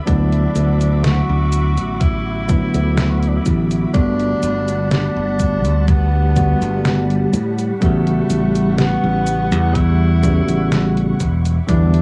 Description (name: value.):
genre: vaporwave.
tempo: 62 BPM.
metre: 4/4.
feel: straight.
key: G lydian.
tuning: A4 = 440 Hz.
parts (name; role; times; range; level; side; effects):
soft string machine; sustained chords; 0.0-12.0 s; G3 to D6; -29 LUFS; equal; ensemble chorus, vintage 12-bit sampler grit, cassette tape.
warm tenor saxophone; melody; 0.1-12.0 s; A3 to F#4; -27 LUFS; equal; vintage 12-bit sampler grit, cassette tape, tape echo.
bell-like tine electric piano; accompaniment; 0.1-12.0 s; C#3 to F#4; -23 LUFS; equal; lush chorus, cassette tape, analog delay.
modern bright fingered electric bass; bass; 0.1-12.0 s; E1 to A2; -20 LUFS; equal; none.
detuned 8-bit digital drum machine; drums; 0.1-12.0 s; cabasa, hi-hat, snare drum; -24 LUFS; equal; none.
electronic kick drum; drums; 0.1-11.9 s; none; -21 LUFS; equal; none.
room: light reverb.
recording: home recording on cassette.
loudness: -17 LUFS.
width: mono.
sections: 0.0-12.0 A section.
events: none.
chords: 0.0 D69; 3.9 Gmaj9; 7.3 A13; 11.2 Em7.